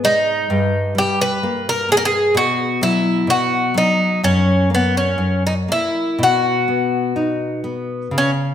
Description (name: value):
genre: fado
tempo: 60-66 BPM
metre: 2/4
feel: rubato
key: unclear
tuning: A4 = 440 Hz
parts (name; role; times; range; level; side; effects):
- Irish bouzouki; melody; 0.0-8.3 s; B3 to B4; -17 LUFS; equal; none
- nylon-string guitar; accompaniment; 0.0-8.5 s; F#2 to D#4; -20 LUFS; left 1 dB; none
room: moderate recital hall reverb, RT60 1.3 s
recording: none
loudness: -15 LUFS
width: side -9 dB against mid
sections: 0.0-8.5 A section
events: none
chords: 0.5 Gm; 2.3 B5; 4.2 F#; 6.2 B